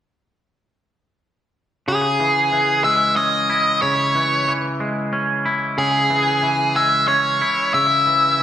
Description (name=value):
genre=rock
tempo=61 BPM (dotted quarters)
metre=6/8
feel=straight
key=C# minor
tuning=A4 = 441 Hz
part: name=octave-fuzz lead guitar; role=melody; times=1.9-8.4 s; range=G#4 to E5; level=-16 LUFS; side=left 1 dB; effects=distortion, slapback echo
part: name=twangy electric guitar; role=arpeggios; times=1.9-8.4 s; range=C#3 to E4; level=-21 LUFS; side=equal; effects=spring reverb, slapback echo
room=wet large studio reverb, RT60 1.1 s, digital ambience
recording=none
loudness=-16 LUFS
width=side -10 dB against mid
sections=1.9-8.4 A section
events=none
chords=1.9 C#m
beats=| 1.87 2.85 | 3.83 4.80 | 5.78 6.76 | 7.74